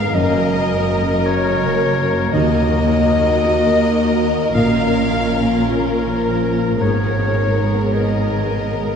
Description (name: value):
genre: cinematic, emotional film score for orchestra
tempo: 54 BPM (dotted quarters)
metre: 6/8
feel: rubato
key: Eb minor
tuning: A4 = 438 Hz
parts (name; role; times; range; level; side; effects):
- dark symphonic violin section; melody; 0.0-9.0 s; Bb4; -25 LUFS; left 3 dB; none
- warm clarinet; second line; 0.0-9.0 s; Bb4 to F5; -22 LUFS; left 2 dB; none
- warm symphonic violin section; second line; 0.0-9.0 s; Bb4 to F5; -25 LUFS; left 2 dB; none
- felt-muted upright piano; accompaniment; 0.0-9.0 s; Eb2 to Bb4; -23 LUFS; equal; none
- rich symphonic viola section; accompaniment; 0.0-9.0 s; Bb3 to Bb4; -25 LUFS; equal; none
- mellow French horn section; sustained chords; 0.0-9.0 s; Cb3 to Bb4; -26 LUFS; left 2 dB; none
- concert harp; arpeggios; 0.0-9.0 s; Gb2 to Bb4; -27 LUFS; left 6 dB; none
- warm symphonic cello section; bass; 0.0-9.0 s; Eb2 to Bb2; -22 LUFS; right 2 dB; none
- warm symphonic double bass section; bass; 0.0-9.0 s; Gb1 to Eb2; -23 LUFS; right 3 dB; none
room: wet cathedral reverb, RT60 4.6 s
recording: dark, warm production, nothing above 10.3 kHz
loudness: -14 LUFS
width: side -7 dB against mid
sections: 0.0-9.0 A section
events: none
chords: 0.2 Gb; 2.3 Ebm; 4.6 Bbm; 6.8 Abmadd9